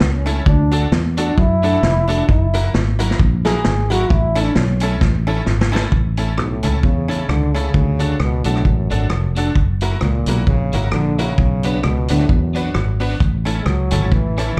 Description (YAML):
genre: ska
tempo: 132 BPM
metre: 4/4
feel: swing 57% on 8ths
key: A major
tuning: A4 = 440 Hz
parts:
  - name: dark trombone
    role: melody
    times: 0.0-5.0 s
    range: B3 to G#4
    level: -23 LUFS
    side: equal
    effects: slapback echo
  - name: fingered electric bass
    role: bass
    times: 0.0-14.6 s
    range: F1 to F#2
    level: -20 LUFS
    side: equal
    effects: none
  - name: vintage drum kit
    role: drums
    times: 0.0-14.6 s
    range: hi-hat, kick drum, rim click, snare drum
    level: -22 LUFS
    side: equal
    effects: none
  - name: clean electric guitar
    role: accompaniment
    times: 0.3-14.5 s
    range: F#3 to F#4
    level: -30 LUFS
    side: equal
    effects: slapback echo
  - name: tack piano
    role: stabs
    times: 0.3-14.5 s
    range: C#4 to B4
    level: -29 LUFS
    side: equal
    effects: slapback echo
  - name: clear trombone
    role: melody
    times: 6.4-14.6 s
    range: F#2 to G#3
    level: -26 LUFS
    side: equal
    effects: slapback echo
room: little or no reverb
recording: live gig heard through the venue's PA, club reverb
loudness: -17 LUFS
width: mono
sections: 0.0-5.9 A section; 5.9-14.6 B section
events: trombone solo 0.0-5.9; drum fill 5.0-5.9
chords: 0.5 D; 2.3 F#7; 4.1 A; 7.7 D; 9.6 F#7; 11.4 Bm; 13.2 A